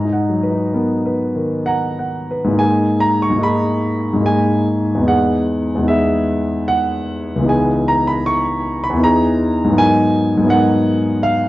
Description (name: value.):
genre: classical, impressionist solo piano.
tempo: 62-83 BPM.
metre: 3/4.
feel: rubato.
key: G# minor.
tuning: A4 = 439 Hz.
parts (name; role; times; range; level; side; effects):
warm grand piano; solo; 0.0-11.5 s; C#2 to C#6; -14 LUFS; equal; none.
room: wet stone room reverb, RT60 1.0 s.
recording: worn, warbling old tape, cassette tape, warbly pitch drift, nothing above 7.7 kHz.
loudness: -14 LUFS.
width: side -16 dB against mid.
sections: 0.0-2.6 A section; 2.6-11.5 A section.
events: none.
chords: 0.0 G#m9; 2.6 G#madd9; 5.1 Emaj7; 7.5 C#m9; 9.0 Emaj7#11; 9.8 G#m9.